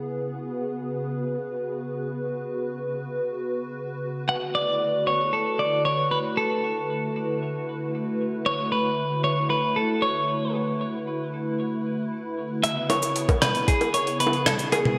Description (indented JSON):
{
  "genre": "IDM",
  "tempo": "115 BPM",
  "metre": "4/4",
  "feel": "straight",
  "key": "C# phrygian",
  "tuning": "A4 = 440 Hz",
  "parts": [
    { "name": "hollow soft pad", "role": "sustained chords", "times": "0.0-15.0 s", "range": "C#3 to B4", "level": "-30 LUFS", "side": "equal", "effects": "ensemble chorus" },
    { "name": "clean electric guitar", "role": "melody", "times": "4.3-15.0 s", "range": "G#4 to F#5", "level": "-27 LUFS", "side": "equal", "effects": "delay" },
    { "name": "jungle sampler-style drum kit", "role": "drums", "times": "12.6-15.0 s", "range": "bongos, cabasa, hi-hat, rim click, toms", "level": "-26 LUFS", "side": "equal", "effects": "overdrive, gated reverb" },
    { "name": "electronic kick drum", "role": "drums", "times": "13.3-13.8 s", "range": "none", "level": "-25 LUFS", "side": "equal", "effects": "none" }
  ],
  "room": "wet lush hall reverb, RT60 1.8 s, digital ambience",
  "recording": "bright 1980s-style digital production",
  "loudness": "-26 LUFS",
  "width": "mono",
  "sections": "0.0-12.6 A section; 12.6-15.0 B section",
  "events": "break 10.5-12.6",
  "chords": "0.0 C#m7; 4.3 D; 12.6 C#m7"
}